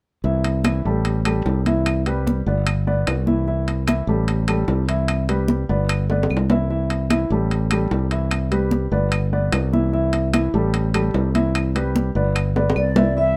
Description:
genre	Afro-Cuban jazz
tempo	149 BPM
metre	4/4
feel	straight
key	unclear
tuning	A4 = 440 Hz
part	warm baby grand piano	accompaniment	0.2-13.4 s	E3 to E5	-26 LUFS	equal	none
part	modern bright fingered electric bass	bass	0.2-13.4 s	G1 to C2	-23 LUFS	equal	none
part	congas	percussion	0.2-13.4 s	none	-27 LUFS	equal	none
part	timbales	percussion	0.4-13.1 s	none	-28 LUFS	equal	none
part	claves	percussion	0.7-13.0 s	none	-34 LUFS	equal	none
part	vibraphone with soft mallets	melody	12.8-13.4 s	D5 to E5	-26 LUFS	equal	none
part	concert flute	second line	12.8-13.4 s	D5 to E5	-25 LUFS	equal	none
room	light reverb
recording	none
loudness	-20 LUFS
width	mono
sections	0.2-13.2 A section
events	drum fill 6.1-6.7, 12.6-13.2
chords	0.2 Am7; 1.9 G; 3.5 Am7; 5.1 G; 6.7 Am7; 8.3 G; 9.9 Am7; 11.5 G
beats	| 0.24 0.65 1.05 1.46 | 1.86 2.27 2.67 3.07 | 3.48 3.88 4.28 4.69 | 5.09 5.49 5.90 6.30 | 6.71 7.11 7.51 7.92 | 8.32 8.72 9.13 9.53 | 9.94 10.34 10.74 11.15 | 11.55 11.95 12.36 12.76 | 13.16

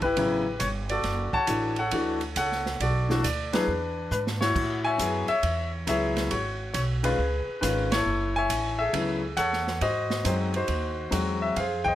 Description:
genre	jazz piano trio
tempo	137 BPM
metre	4/4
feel	swing 66% on 8ths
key	unclear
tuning	A4 = 443 Hz
part	warm baby grand piano	melody	0.0-11.9 s	C#3 to A5	-26 LUFS	left 2 dB	none
part	upright bass	bass	0.0-11.9 s	F#1 to A2	-30 LUFS	right 1 dB	none
part	open jazz drum kit	drums	0.0-11.9 s	crash cymbal, hi-hat, kick drum, ride cymbal, snare drum	-33 LUFS	right 4 dB	none
room	light reverb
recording	none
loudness	-24 LUFS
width	side -13 dB against mid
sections	0.0-11.6 A section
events	band accent 3.5, 7.8; drum fill 4.1-4.6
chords	0.0 A7; 1.1 Dmaj7; 2.8 Bm7; 3.7 E7; 4.6 A6; 6.3 G#m7; 7.2 C#7; 8.1 F#m9; 9.8 G#7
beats	0.18 0.61 | 1.05 1.49 1.93 2.37 | 2.81 3.24 3.68 4.12 | 4.56 5.00 5.43 5.87 | 6.31 6.75 7.19 7.62 | 8.06 8.50 8.94 9.38 | 9.81 10.25 10.69 11.13 | 11.57

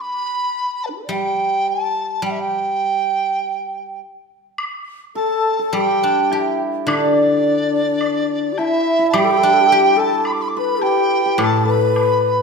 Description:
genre	chinese traditional, Chinese chamber ensemble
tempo	106 BPM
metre	4/4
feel	rubato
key	G gong mode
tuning	A4 = 440 Hz
part	mellow hollow large dizi	melody	0.0-12.4 s	D4 to D6	-19 LUFS	right 3 dB	none
part	guzheng	accompaniment	1.1-12.4 s	A2 to G4	-23 LUFS	left 2 dB	none
part	woodblock	percussion	4.6-12.1 s	none	-27 LUFS	equal	none
part	breathy bright low xiao	second line	5.2-12.4 s	D4 to B4	-20 LUFS	left 8 dB	none
part	hammered dulcimer	second line	5.2-12.4 s	D4 to B4	-22 LUFS	right 5 dB	none
room	wet recital hall reverb, RT60 1.6 s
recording	none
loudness	-15 LUFS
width	side -4 dB against mid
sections	0.0-4.6 A section; 4.6-12.4 B section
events	none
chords	none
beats	0.54 1.10 1.67 | 2.23 2.80 3.38 3.98 | 4.58 5.16 5.74 6.32 | 6.88 7.45 8.01 8.58 | 9.14 9.70 10.25 10.82 | 11.39 11.96

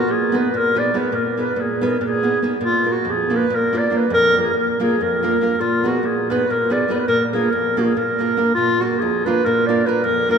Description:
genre	balkan folk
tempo	282 BPM (eighths)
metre	7/8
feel	straight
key	Bb phrygian dominant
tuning	A4 = 440 Hz
part	mellow clarinet	melody	0.0-10.4 s	F4 to D5	-18 LUFS	left 1 dB	none
part	nylon-string guitar	accompaniment	0.0-10.4 s	F2 to Cb5	-20 LUFS	right 2 dB	none
room	wet cathedral reverb, RT60 6.0 s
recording	recorded in a church or concert hall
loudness	-16 LUFS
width	side -6 dB against mid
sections	0.0-8.6 A section; 8.6-10.4 A section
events	none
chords	0.0 Abm/Bb; 2.6 Bb; 5.6 Abm/Bb; 7.1 Bb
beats	0.06 0.27 0.48 0.70 0.91 | 1.12 1.34 1.55 1.76 1.98 2.19 2.40 | 2.61 2.83 3.04 3.25 3.46 3.68 3.89 | 4.10 4.31 4.53 4.74 4.95 5.16 5.38 | 5.59 5.80 6.01 6.22 6.44 6.65 6.86 | 7.07 7.29 7.50 7.71 7.92 8.13 8.35 | 8.56 8.77 8.98 9.19 9.40 9.61 9.82 | 10.04 10.25

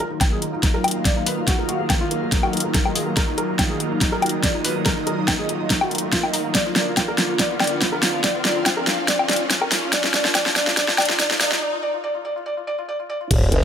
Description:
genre	heavy wobble dubstep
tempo	142 BPM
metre	4/4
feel	half-time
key	unclear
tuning	A4 = 440 Hz
part	felt-muted upright piano	melody	0.0-13.3 s	Bb3 to D5	-26 LUFS	equal	tape echo
part	supersaw chords	sustained chords	0.0-13.6 s	D3 to F4	-29 LUFS	right 1 dB	phaser, sidechain pumping, low-pass filter
part	dubstep drum kit	drums	0.0-13.6 s	crash cymbal, hi-hat, snare drum, woodblock	-20 LUFS	left 1 dB	overdrive
part	riser and sub drop	sound effects	3.4-13.6 s	none	-30 LUFS	equal	none
part	airy breathy pad	texture	0.1-13.6 s	Gb3 to F5	-29 LUFS	equal	chorus, phaser, sidechain pumping
part	electronic kick drum	drums	0.2-13.4 s	none	-23 LUFS	equal	overdrive
part	formant-sweep wobble bass	bass	13.3-13.6 s	Eb1 to Gb1	-19 LUFS	equal	chorus, overdrive
room	moderate plate reverb, RT60 1.1 s, digital ambience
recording	high-pass filter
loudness	-18 LUFS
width	side -8 dB against mid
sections	0.0-13.3 A section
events	build-up 0.0-13.3; drum fill 0.0-11.6; filter sweep on supersaw synth 0.0-13.3; filter sweep 0.0-13.3; riser 3.4-11.6; break 11.6-13.3; impact 13.3-13.6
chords	0.0 Ebmadd9; 6.5 Bb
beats	0.21 0.63 1.05 | 1.48 1.90 2.32 2.74 | 3.17 3.59 4.01 4.43 | 4.86 5.28 5.70 6.12 | 6.55 6.97 7.39 7.82 | 8.24 8.66 9.08 9.51 | 9.93 10.35 10.77 11.20 | 11.62 12.04 12.46 12.88 | 13.31

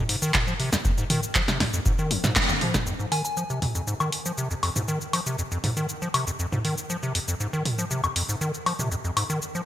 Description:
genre	acid house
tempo	119 BPM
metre	4/4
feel	straight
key	F minor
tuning	A4 = 440 Hz
part	acid bass, square	riff	0.0-9.6 s	F2 to F3	-28 LUFS	equal	overdrive, ping-pong delay
part	punchy analog drum machine	drums	0.1-9.6 s	cabasa, handclaps, hi-hat, snare drum, toms, woodblock	-26 LUFS	equal	none
part	electronic kick drum	drums	0.3-2.8 s	none	-27 LUFS	equal	none
part	soft synth bell	melody	3.1-3.3 s	Ab5	-33 LUFS	left 2 dB	chorus, phaser, ping-pong delay
room	moderate lush hall reverb, RT60 1.8 s, digital ambience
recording	bright 1980s-style digital production, faint mains hum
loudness	-23 LUFS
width	side -12 dB against mid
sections	0.0-2.9 A section; 2.9-9.7 B section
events	drum fill 2.1-2.9; band accent 2.4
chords	0.0 Fm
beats	0.34 | 0.85 1.35 1.86 2.36 | 2.87 3.37 3.87 4.38 | 4.88 5.39 5.89 6.39 | 6.90 7.40 7.91 8.41 | 8.92 9.42

